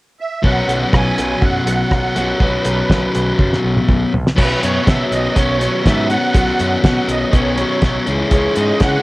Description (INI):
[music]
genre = indie rock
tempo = 122 BPM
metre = 4/4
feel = straight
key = unclear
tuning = A4 = 441 Hz
[part]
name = musette accordion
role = melody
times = 0.2-9.0 s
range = B4 to G#5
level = -22 LUFS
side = right 3 dB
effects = tape echo
[part]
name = fuzz guitar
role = riff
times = 0.4-9.0 s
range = B2 to C#4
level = -17 LUFS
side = left 2 dB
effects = distortion
[part]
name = growling picked electric bass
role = bass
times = 0.4-9.0 s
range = B1 to C#3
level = -21 LUFS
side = equal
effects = overdrive
[part]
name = cloth-damped thuddy drum kit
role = drums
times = 0.4-8.9 s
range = crash cymbal, hi-hat, kick drum, rim click, snare drum, toms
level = -15 LUFS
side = equal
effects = none
[sound]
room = little or no reverb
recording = home recording on cassette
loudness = -13 LUFS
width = side -19 dB against mid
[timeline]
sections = 0.4-4.4 A section; 4.4-9.0 B section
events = drum fill 3.4-4.4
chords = 0.4 Bsus2; 4.1 N.C.; 4.4 Bsus2; 8.1 C#madd9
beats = | 0.44 0.93 1.42 1.92 | 2.41 2.90 3.39 3.88 | 4.38 4.87 5.36 5.85 | 6.34 6.84 7.33 7.82 | 8.32 8.81